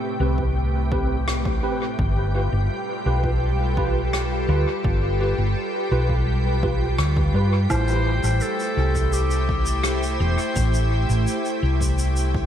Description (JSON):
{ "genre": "ambient dub", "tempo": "84 BPM", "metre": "4/4", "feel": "straight", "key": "A minor", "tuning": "A4 = 440 Hz", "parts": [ { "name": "soft additive organ-like pad", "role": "sustained chords", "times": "0.0-12.5 s", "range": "A2 to G5", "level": "-27 LUFS", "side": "equal", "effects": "ensemble chorus, built-in reverb" }, { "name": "bright tine electric piano", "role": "stabs", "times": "0.2-7.6 s", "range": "C4 to B4", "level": "-29 LUFS", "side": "right 2 dB", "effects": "ensemble chorus, dub echo" }, { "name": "hollow-body short-scale fingered electric bass", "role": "bass", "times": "0.2-12.5 s", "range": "E1 to G2", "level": "-21 LUFS", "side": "equal", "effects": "none" }, { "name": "electronic kick drum", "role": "drums", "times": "0.4-12.5 s", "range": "none", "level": "-27 LUFS", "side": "equal", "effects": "none" }, { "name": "rim click, woodblock and shaker", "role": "drums", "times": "1.3-12.3 s", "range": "none", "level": "-32 LUFS", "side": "left 1 dB", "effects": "dub echo" }, { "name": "clear clarinet", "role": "melody", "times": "7.7-10.9 s", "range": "G4 to C5", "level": "-28 LUFS", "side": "left 1 dB", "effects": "dub echo" }, { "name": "handpan", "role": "arpeggios", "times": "7.7-11.1 s", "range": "E4", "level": "-35 LUFS", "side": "right 2 dB", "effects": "ping-pong delay" } ], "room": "moderate cathedral reverb, RT60 5.0 s", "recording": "dreamy mix soaked in reverb", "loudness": "-19 LUFS", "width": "side -10 dB against mid", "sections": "0.0-12.5 A section", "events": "none", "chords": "0.0 Am9; 2.0 G7; 7.7 Am7" }